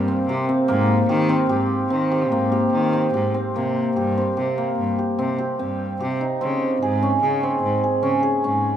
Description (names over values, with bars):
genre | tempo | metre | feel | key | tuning
contemporary instrumental, chamber music in an uneven meter | 148 BPM | 7/4 | straight | C phrygian | A4 = 440 Hz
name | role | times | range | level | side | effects
cimbalom | arpeggios | 0.0-8.8 s | Bb3 to Ab4 | -20 LUFS | equal | none
rich cello | bass | 0.0-8.8 s | G2 to Eb3 | -24 LUFS | left 1 dB | none
room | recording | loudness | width
moderate recital hall reverb, RT60 1.4 s | minimal, uncompressed stereo recording | -18 LUFS | side -9 dB against mid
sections
0.0-3.6 A section; 3.6-8.8 B section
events
none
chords
0.0 C5; 0.7 Abmaj9; 3.6 C7(no3); 6.4 Dbsus2